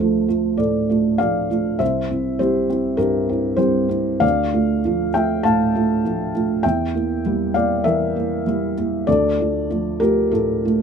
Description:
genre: neoclassical minimalist piano.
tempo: 99 BPM.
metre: 4/4.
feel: rubato.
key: D minor.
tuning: A4 = 440 Hz.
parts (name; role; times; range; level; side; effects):
felt-muted upright piano; solo; 0.0-10.8 s; C2 to A5; -17 LUFS; right 1 dB; none.
room: light reverb.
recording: minimal, uncompressed stereo recording.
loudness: -17 LUFS.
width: side -6 dB against mid.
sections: 0.0-10.8 A section.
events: none.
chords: 0.0 Dm; 1.8 C; 4.2 Dm; 6.6 Edim; 9.1 Dm.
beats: 0.58 1.20 | 1.81 2.41 3.00 3.60 | 4.23 4.84 5.44 6.04 | 6.63 7.24 7.84 8.45 | 9.07 9.70 10.32.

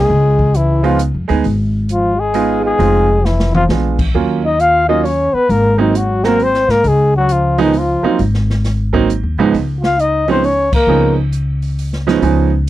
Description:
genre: jazz, small-group swing and bop.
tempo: 134 BPM.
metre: 3/4.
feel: swing 65% on 8ths.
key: Db mixolydian.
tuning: A4 = 441 Hz.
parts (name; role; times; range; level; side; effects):
breathy flugelhorn; melody; 0.0-11.2 s; Eb4 to F5; -15 LUFS; left 3 dB; none.
warm trombone; second line; 0.0-11.1 s; Eb3 to F4; -21 LUFS; right 2 dB; none.
clear baby grand piano; accompaniment; 0.0-12.5 s; Db2 to Ab4; -16 LUFS; right 7 dB; none.
upright bass; bass; 0.0-12.7 s; F1 to Ab2; -16 LUFS; left 1 dB; none.
open jazz drum kit; drums; 0.4-12.7 s; crash cymbal, hi-hat, kick drum, snare drum, toms; -21 LUFS; left 1 dB; none.
room: little or no reverb.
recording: dry, close 1970s-style studio recording.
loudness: -12 LUFS.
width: side -14 dB against mid.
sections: 0.0-9.5 A section; 9.5-12.7 A section.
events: drum fill 3.2-3.7; band accent 10.7.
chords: 0.1 Db7; 2.8 Fm7; 3.7 Bb7b9; 4.1 Ebm7; 5.5 Ab7; 6.8 Db; 8.2 Ab5; 9.5 Db7.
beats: | 0.10 0.55 1.00 | 1.45 1.90 2.34 | 2.79 3.24 3.69 | 4.14 4.59 5.04 | 5.49 5.94 6.39 | 6.84 7.29 7.74 | 8.19 8.64 9.09 | 9.54 9.99 10.44 | 10.88 11.33 11.78 | 12.23 12.68.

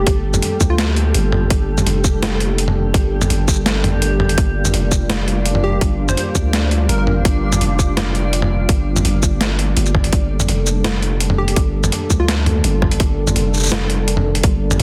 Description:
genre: half-time drum and bass.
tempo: 167 BPM.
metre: 4/4.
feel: half-time.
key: G minor.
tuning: A4 = 440 Hz.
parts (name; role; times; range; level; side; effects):
plucky unison lead; melody; 0.0-0.8, 5.6-7.0, 11.4-12.3 s; F4 to C5; -29 LUFS; equal; dub echo.
dark analog pad; sustained chords; 0.0-14.8 s; G3 to A4; -26 LUFS; equal; chorus, sidechain pumping.
long sustained 808-style bass; bass; 0.0-14.8 s; F1 to D2; -21 LUFS; equal; none.
backwards swelling texture; texture; 0.0-10.1 s; G3 to G4; -29 LUFS; equal; built-in reverb.
boom bap sampler-style drum kit; drums; 0.1-14.8 s; hi-hat, shaker, snare drum, toms; -22 LUFS; equal; overdrive.
electronic kick drum; drums; 0.1-14.5 s; none; -19 LUFS; equal; overdrive.
room: light reverb.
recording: dense, heavily limited modern master.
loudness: -17 LUFS.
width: mono.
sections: 0.0-10.1 A section; 10.1-14.8 A section.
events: drop 0.0-10.1, 10.1-14.8.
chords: 0.0 Gmadd9.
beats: | 0.07 0.43 0.79 1.15 | 1.50 1.86 2.22 2.58 | 2.94 3.30 3.66 4.02 | 4.38 4.74 5.10 5.46 | 5.82 6.17 6.54 6.89 | 7.25 7.61 7.97 8.33 | 8.69 9.05 9.41 9.77 | 10.13 10.49 10.85 11.21 | 11.56 11.92 12.28 12.64 | 13.00 13.36 13.72 14.08 | 14.44 14.80.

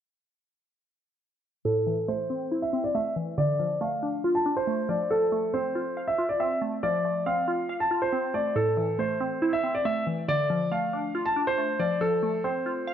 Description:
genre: hip hop.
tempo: 139 BPM.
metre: 4/4.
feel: half-time.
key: A minor.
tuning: A4 = 440 Hz.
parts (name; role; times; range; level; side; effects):
warm concert grand piano; melody; 1.7-12.9 s; A4 to A5; -26 LUFS; equal; low-pass filter.
glassy wavetable pluck; accompaniment; 1.7-12.9 s; A2 to F5; -29 LUFS; equal; chorus, low-pass filter.
room: moderate scoring stage reverb, RT60 1.7 s.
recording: none.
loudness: -24 LUFS.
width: side -9 dB against mid.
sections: 1.7-12.9 A section.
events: filter sweep 1.7-12.9.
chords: 1.7 Am; 3.4 Dm; 5.1 F; 8.6 Am; 10.3 Dm; 12.0 F.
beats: | 1.65 2.08 2.52 2.95 | 3.38 3.81 4.24 4.67 | 5.11 5.54 5.97 6.40 | 6.83 7.26 7.70 8.13 | 8.56 8.99 9.42 9.85 | 10.28 10.72 11.15 11.58 | 12.01 12.44 12.87.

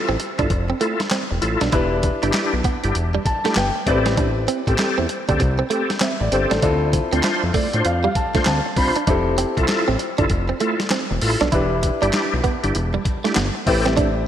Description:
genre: R&B, new jack swing.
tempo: 98 BPM.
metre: 4/4.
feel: swing 63% on 16ths.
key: unclear.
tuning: A4 = 440 Hz.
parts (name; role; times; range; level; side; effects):
warm concert grand piano; accompaniment; 0.0-14.3 s; C4 to B5; -25 LUFS; left 3 dB; slapback echo.
bright tonewheel organ; stabs; 0.0-13.9 s; C4 to C5; -24 LUFS; left 1 dB; chorus vibrato, fast rotary speaker, slapback echo.
direct-recorded clean electric guitar; riff; 0.1-14.1 s; G3 to E4; -25 LUFS; right 6 dB; analog chorus, slapback echo.
fat analog bass; bass; 0.1-14.3 s; E1 to A2; -22 LUFS; equal; none.
dusty soul sampler-style drum kit; drums; 0.2-14.2 s; handclaps, hi-hat, kick drum, snare drum; -23 LUFS; equal; overdrive.
room: moderate lush hall reverb, RT60 1.9 s, digital ambience.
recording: big arena sound.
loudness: -17 LUFS.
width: side -10 dB against mid.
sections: 0.0-14.3 A section.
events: grand piano fill 3.0-4.2, 7.2-9.1.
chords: 0.0 Fmaj7; 1.7 Em7; 3.9 Am7; 6.6 Dm7; 9.1 Fmaj7; 11.5 Em7; 13.7 Am7.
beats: 0.50 1.11 | 1.73 2.34 2.95 3.56 | 4.18 4.79 5.40 6.01 | 6.62 7.24 7.85 8.46 | 9.07 9.69 10.30 10.91 | 11.52 12.13 12.75 13.36 | 13.97.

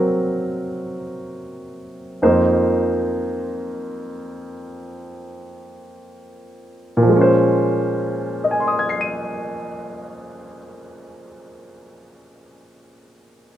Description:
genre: jazz.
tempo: 44-57 BPM.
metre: 4/4.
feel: swing 67% on 8ths.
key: Bb minor.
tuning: A4 = 440 Hz.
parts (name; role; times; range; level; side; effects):
warm grand piano; accompaniment; 0.0-13.6 s; F2 to Eb7; -19 LUFS; equal; none.
room: wet studio ambience, RT60 0.5 s.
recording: none.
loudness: -18 LUFS.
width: side -11 dB against mid.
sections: 0.0-7.1 A section; 7.1-12.5 B section.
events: slowing down 0.0-7.1.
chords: 0.0 Cm7b5; 2.2 F7sus4; 7.1 Bbm7.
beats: 0.07 1.12 | 2.21 3.34 4.52 5.76 | 7.08 8.44 9.79 11.14.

